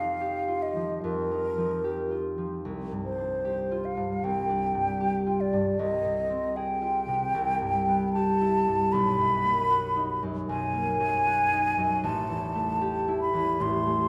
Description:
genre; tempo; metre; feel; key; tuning
classical, impressionist duo for flute and harp; 76 BPM; 4/4; rubato; unclear; A4 = 440 Hz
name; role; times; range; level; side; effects
mellow hollow silver concert flute; melody; 0.0-14.1 s; Bb4 to C6; -29 LUFS; equal; none
concert harp; accompaniment; 0.0-14.1 s; A1 to Ab4; -31 LUFS; equal; none
room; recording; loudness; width
wet recital hall reverb, RT60 1.3 s; none; -27 LUFS; mono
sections
0.0-14.1 A section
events
none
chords
0.0 Ebadd9/F; 2.6 Csus24; 5.8 Ab6/C; 7.3 Asus2/C; 8.9 Bmaj7; 12.0 Am7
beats
0.21 1.03 1.84 | 2.64 3.44 4.23 5.00 | 5.79 6.56 7.34 8.13 | 8.92 9.70 10.48 11.25 | 12.03 12.81 13.61

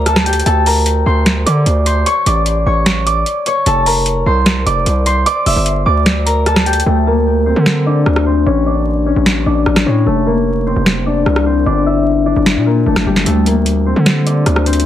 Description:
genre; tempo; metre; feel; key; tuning
hip hop, trap; 150 BPM; 4/4; half-time; unclear; A4 = 440 Hz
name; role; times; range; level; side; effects
concert harp; melody; 0.0-14.9 s; G3 to E6; -14 LUFS; left 2 dB; low-pass filter
distorted 808-style bass; bass; 0.0-14.8 s; F1 to D3; -15 LUFS; equal; distortion
booming analog drum machine; drums; 0.1-14.9 s; hi-hat, rim click, snare drum; -16 LUFS; right 1 dB; none
room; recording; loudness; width
light reverb; dense, heavily limited modern master, vinyl crackle; -11 LUFS; side -11 dB against mid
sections
0.0-6.9 A section; 6.9-14.9 B section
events
hi-hats muted 6.9-13.3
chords
0.5 D5; 2.1 A; 3.7 F; 5.3 Gm; 6.9 D5; 8.5 A; 10.1 F; 11.7 Gm; 13.3 D5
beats
0.06 | 0.46 0.86 1.26 1.66 | 2.06 2.46 2.86 3.26 | 3.66 4.06 4.46 4.86 | 5.26 5.66 6.06 6.46 | 6.86 7.26 7.66 8.06 | 8.46 8.86 9.26 9.66 | 10.06 10.46 10.86 11.26 | 11.66 12.06 12.46 12.86 | 13.26 13.66 14.06 14.46

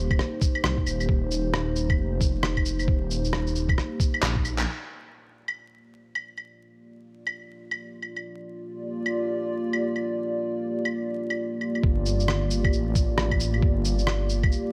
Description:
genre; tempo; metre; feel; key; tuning
future garage; 134 BPM; 4/4; swing 62% on 16ths; G minor; A4 = 440 Hz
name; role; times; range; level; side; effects
dark analog pad; sustained chords; 0.0-14.7 s; Bb3 to D5; -32 LUFS; equal; chorus, sidechain pumping
dark detuned saw bass; bass; 0.0-4.7, 11.8-14.5 s; Eb1 to C2; -29 LUFS; equal; sidechain pumping
electronic claves, rim click, shaker and handclaps; drums; 0.1-14.6 s; none; -32 LUFS; equal; studio reverb
electronic kick drum; drums; 0.1-4.4, 11.8-14.5 s; none; -26 LUFS; equal; studio reverb
room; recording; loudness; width
light reverb; vinyl crackle; -26 LUFS; mono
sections
0.0-4.7 A section; 4.7-11.8 B section; 11.8-14.7 C section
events
drum fill 4.2-4.7; band accent 4.6; filter sweep on analog synth pad 4.7-11.8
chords
0.0 Eb6; 4.7 Gm7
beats
0.19 0.64 | 1.09 1.54 1.98 2.43 | 2.88 3.33 3.77 4.22 | 4.67 5.12 5.57 6.01 | 6.46 6.91 7.36 7.80 | 8.25 8.70 9.15 9.60 | 10.04 10.49 10.94 11.39 | 11.83 12.28 12.73 13.18 | 13.62 14.07 14.52

